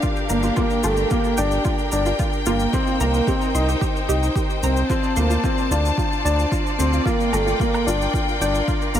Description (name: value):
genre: piano and strings electronica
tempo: 111 BPM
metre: 4/4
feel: straight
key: G minor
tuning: A4 = 441 Hz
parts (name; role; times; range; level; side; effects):
- clear studio string section; sustained chords; 0.0-9.0 s; D4 to A5; -25 LUFS; left 1 dB; sidechain pumping, shimmer reverb
- warbly dusty pluck; arpeggios; 0.0-9.0 s; F4 to C6; -30 LUFS; right 1 dB; chorus, sidechain pumping, tape echo, shimmer reverb
- dark upright piano; riff; 0.0-9.0 s; A3 to Eb4; -23 LUFS; equal; tape echo, shimmer reverb
- electronic kick drum; drums; 0.0-8.8 s; none; -24 LUFS; equal; none
- shaker and woodblock; drums; 0.0-9.0 s; none; -34 LUFS; left 2 dB; none
- round analog bass; bass; 0.3-9.0 s; G1 to D2; -22 LUFS; equal; sidechain pumping
room: light reverb, small room ambience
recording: none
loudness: -18 LUFS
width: side -10 dB against mid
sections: 0.0-9.0 A section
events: none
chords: 0.0 Gm7; 2.7 Cm7; 4.9 Dm7; 7.1 Gm7